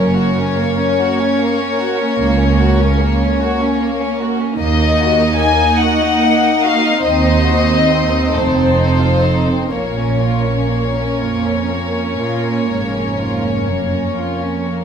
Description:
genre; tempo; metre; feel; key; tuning
classical, slow romantic movement for string orchestra; 40-51 BPM (dotted quarters); 12/8; rubato; Bb minor; A4 = 440 Hz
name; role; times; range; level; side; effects
warm studio violin section; melody; 0.0-14.8 s; C5 to Ab5; -19 LUFS; left 5 dB; none
rich studio violin section; second line; 0.0-14.8 s; A3 to Eb5; -21 LUFS; left 2 dB; none
dark studio viola section; accompaniment; 0.0-14.8 s; Bb3 to Eb4; -19 LUFS; right 3 dB; none
dark studio double bass section; bass; 0.0-13.9 s; F1 to Eb2; -20 LUFS; right 2 dB; none
rich studio cello section; bass; 0.0-14.8 s; Db2 to Bb2; -21 LUFS; right 2 dB; none
room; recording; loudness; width
moderate scoring stage reverb, RT60 1.4 s; close, detailed microphones; -13 LUFS; side -7 dB against mid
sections
0.0-14.8 A section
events
none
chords
0.0 Gb; 4.6 Ebm; 7.0 Cm/Eb; 8.3 F7; 9.7 Bbm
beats
0.98 2.19 3.39 | 4.58 5.79 7.03 8.32 | 9.72 11.20 12.70 14.17

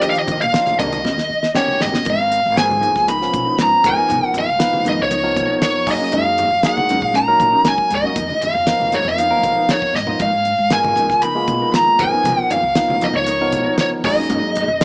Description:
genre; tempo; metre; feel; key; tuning
electric jazz fusion; 118 BPM; 4/4; straight; G# dorian; A4 = 440 Hz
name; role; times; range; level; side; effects
lead guitar through a small cranked amp; melody; 0.0-14.8 s; Db5 to B5; -15 LUFS; equal; overdrive
barky tine electric piano; accompaniment; 0.0-14.8 s; Eb3 to B4; -23 LUFS; equal; overdrive, phaser
mellow electric guitar; stabs; 0.0-14.8 s; Eb3 to A#4; -26 LUFS; equal; lush chorus
upright bass; bass; 0.0-14.8 s; G#1 to F#3; -28 LUFS; equal; none
damped 70s drum kit; drums; 0.0-14.8 s; hi-hat, kick drum, snare drum, toms; -22 LUFS; equal; none
congas; percussion; 0.3-14.7 s; none; -29 LUFS; equal; none
room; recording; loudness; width
light reverb, small room reverb; small speaker sound; -14 LUFS; side -38 dB against mid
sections
0.0-2.1 A section; 2.1-14.8 B section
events
drum fill 1.0-2.1, 10.0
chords
0.0 Ebmaj9; 0.8 Cm9; 1.0 Eb7alt; 2.1 G#m69; 3.8 C#13; 5.9 F#69; 8.2 Bmaj7#11; 10.2 G#m69; 12.0 C#13; 14.0 F#69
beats
| 0.03 0.54 1.05 1.56 | 2.06 2.57 3.08 3.59 | 4.10 4.60 5.11 5.62 | 6.13 6.64 7.15 7.66 | 8.17 8.68 9.19 9.70 | 10.21 10.72 11.23 11.74 | 12.26 12.77 13.28 13.79 | 14.30 14.81

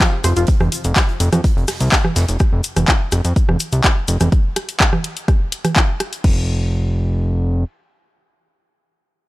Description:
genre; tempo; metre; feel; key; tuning
melodic techno; 125 BPM; 4/4; straight; F minor; A4 = 439 Hz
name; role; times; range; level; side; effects
dark studio string section; sustained chords; 0.0-0.5 s; F3 to Ab4; -39 LUFS; right 1 dB; none
analog drone; drone; 0.2-2.5 s; none; barely audible; none; none
big rock drum kit; drums; 0.0-2.3 s; hi-hat, snare drum; -33 LUFS; right 2 dB; none
electronic kick drum; drums; 0.0-6.3 s; none; -15 LUFS; equal; overdrive, studio reverb
house drum kit; drums; 0.0-6.3 s; congas, crash cymbal, handclaps, hi-hat, rim click; -19 LUFS; equal; overdrive, studio reverb
cabasa; percussion; 0.0-4.3 s; none; -29 LUFS; left 3 dB; none
fat analog bass; bass; 0.2-7.6 s; F1 to F2; -17 LUFS; equal; sidechain pumping
room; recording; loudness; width
small room ambience; dry, gritty hardware recording; -15 LUFS; side -18 dB against mid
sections
0.0-6.2 A section; 6.2-9.3 B section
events
drop 0.0-6.2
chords
0.0 Fmadd9; 2.4 F5; 4.3 N.C.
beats
0.00 | 0.48 0.96 1.44 1.92 | 2.40 2.88 3.36 3.84 | 4.32 4.80 5.28 5.76 | 6.24 6.72 7.20

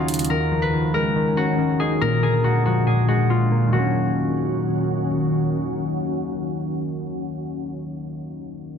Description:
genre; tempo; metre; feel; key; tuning
hip hop; 140 BPM; 4/4; half-time; Eb minor; A4 = 440 Hz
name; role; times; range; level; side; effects
concert harp; melody; 0.0-6.2 s; F4 to Cb5; -25 LUFS; left 2 dB; low-pass filter
warbly lo-fi synth keys; accompaniment; 0.0-8.8 s; Bb2 to Eb4; -23 LUFS; left 1 dB; chorus, low-pass filter
glassy FM pad; sustained chords; 0.0-7.3 s; Eb2 to Gb4; -25 LUFS; equal; ensemble chorus, built-in reverb, low-pass filter
room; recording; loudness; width
moderate recital hall reverb, RT60 1.3 s; dense, heavily limited modern master; -19 LUFS; side -7 dB against mid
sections
0.0-3.7 A section; 3.7-7.2 B section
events
none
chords
0.3 Dbadd9; 2.0 Bb7; 3.7 Ebm7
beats
| 0.30 0.73 1.16 1.58 | 2.01 2.44 2.87 3.30 | 3.73 4.16 4.58 5.01 | 5.44 5.87 6.30 6.73

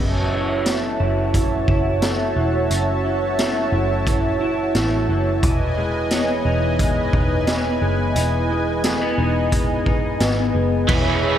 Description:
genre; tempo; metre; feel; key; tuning
dream pop; 88 BPM; 4/4; straight; unclear; A4 = 438 Hz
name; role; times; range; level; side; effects
lush unison pad; sustained chords; 0.0-11.4 s; E3 to B5; -23 LUFS; right 1 dB; chorus
electric guitar through a small old amp; arpeggios; 0.0-11.4 s; F#2 to B4; -24 LUFS; left 1 dB; analog chorus, tape echo
vintage muted picked electric bass; bass; 0.0-11.4 s; E1 to A1; -23 LUFS; equal; none
vibraphone with medium hard mallets; texture; 0.0-11.4 s; B4 to E5; -34 LUFS; right 1 dB; none
raw garage drum kit; drums; 0.7-11.0 s; crash cymbal, hi-hat, kick drum, snare drum; -23 LUFS; equal; none
overdriven electric guitar; accompaniment; 10.9-11.4 s; E3 to G#4; -21 LUFS; right 4 dB; tremolo, analog chorus
room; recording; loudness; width
moderate scoring stage reverb, RT60 1.9 s, small room ambience; none; -17 LUFS; side -10 dB against mid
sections
0.0-10.9 A section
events
none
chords
0.0 F#m7; 5.4 Emaj7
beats
0.66 1.34 2.02 | 2.71 3.39 4.07 4.75 | 5.43 6.11 6.80 7.48 | 8.16 8.84 9.52 10.21 | 10.89

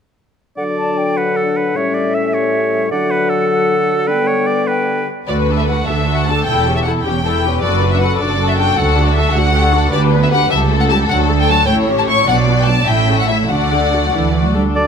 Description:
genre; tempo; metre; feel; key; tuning
quick classical-period movement for symphony orchestra; 102 BPM (dotted quarters); 6/8; rubato; D major; A4 = 440 Hz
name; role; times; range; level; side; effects
clear oboe; second line; 0.6-5.1, 14.8-14.9 s; A4 to E5; -20 LUFS; right 1 dB; none
silver concert flute; second line; 0.6-5.1, 14.8-14.9 s; E5 to A5; -23 LUFS; left 2 dB; none
dark bassoon; accompaniment; 0.6-5.0, 14.8-14.9 s; A2 to D3; -18 LUFS; left 1 dB; none
dark French horn section; sustained chords; 0.6-5.1, 14.8-14.9 s; F#3 to D4; -22 LUFS; left 5 dB; none
rich chamber violin section; melody; 5.3-14.5 s; D5 to C#6; -18 LUFS; left 3 dB; none
warm symphonic violin section; second line; 5.3-14.4 s; F#4 to F#5; -20 LUFS; left 4 dB; none
rich studio viola section; accompaniment; 5.3-14.8 s; F#3 to B4; -20 LUFS; left 3 dB; none
rich chamber double bass section; bass; 5.3-14.7 s; E1 to D2; -18 LUFS; right 4 dB; none
warm studio cello section; bass; 5.3-14.6 s; C#2 to G3; -19 LUFS; right 3 dB; none
room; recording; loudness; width
moderate concert hall reverb, RT60 2.2 s; close, detailed microphones; -12 LUFS; side -7 dB against mid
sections
0.6-5.3 A section; 5.3-14.8 B section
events
none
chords
0.6 D; 1.8 A7; 2.9 D; 4.1 G/D; 5.3 D; 6.5 A7/E; 7.6 D/F#; 8.8 D; 9.9 G/D; 10.5 A7/C#; 11.1 D; 11.7 A7; 12.3 Bm; 12.9 A; 13.5 D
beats
| 0.57 1.17 | 1.76 2.33 | 2.91 3.49 | 4.07 4.67 | 5.29 5.88 | 6.47 7.05 | 7.63 8.21 | 8.79 9.36 | 9.93 10.52 | 11.11 11.69 | 12.28 12.88 | 13.50 14.13 | 14.76

